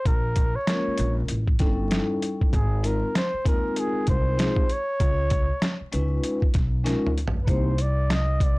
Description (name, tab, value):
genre	hip hop, jazz-hop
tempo	97 BPM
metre	4/4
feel	swing 60% on 16ths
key	unclear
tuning	A4 = 440 Hz
part	mellow flugelhorn	melody	0.0-8.6 s	Ab4 to Eb5	-28 LUFS	equal	none
part	upright bass	bass	0.1-8.6 s	G1 to Eb2	-25 LUFS	equal	tube saturation
part	boom bap sampler-style drum kit	drums	0.1-8.6 s	hi-hat, kick drum, snare drum, toms	-24 LUFS	equal	none
part	vibraphone with soft mallets	accompaniment	0.7-7.7 s	G3 to C5	-28 LUFS	left 2 dB	none
room	little or no reverb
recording	blown-out, overdriven recording, vinyl crackle, overdrive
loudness	-21 LUFS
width	side -23 dB against mid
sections	0.0-8.6 A section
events	drum fill 6.9-7.5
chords	0.1 Bbm7; 1.3 A7#11; 2.5 Ab69; 5.0 Db9; 7.5 Cm7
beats	| 0.06 0.68 1.29 1.91 | 2.53 3.15 3.77 4.39 | 5.01 5.62 6.24 6.86 | 7.48 8.10